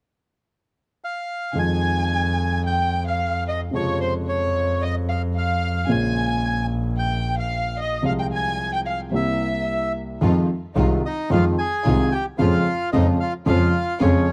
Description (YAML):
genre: tango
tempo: 111 BPM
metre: 4/4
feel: rubato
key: F minor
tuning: A4 = 440 Hz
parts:
  - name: bandoneon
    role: melody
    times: 1.0-14.3 s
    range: Db4 to Ab5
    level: -28 LUFS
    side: equal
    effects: none
  - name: warm concert grand piano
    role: accompaniment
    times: 1.5-14.2 s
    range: Bb1 to F4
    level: -26 LUFS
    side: equal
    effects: none
  - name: warm violin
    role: second line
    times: 1.6-9.9 s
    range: C5 to Ab5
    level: -31 LUFS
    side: equal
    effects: tape echo
  - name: clear double bass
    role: bass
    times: 1.6-14.2 s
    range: Bb1 to F2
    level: -26 LUFS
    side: equal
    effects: none
  - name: rich studio string section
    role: stabs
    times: 10.2-14.2 s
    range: Ab3 to F4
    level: -31 LUFS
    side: equal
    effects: none
room: little or no reverb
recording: dry, close 1970s-style studio recording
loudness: -22 LUFS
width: mono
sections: 0.0-1.6 A section; 1.6-10.2 B section; 10.2-14.3 C section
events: none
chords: 0.0 N.C.; 1.6 Fm7; 3.7 Dbmaj7/F; 5.9 Bbm7; 8.0 Fm/C; 9.1 C7; 10.2 Fm7; 12.4 Dbmaj7/F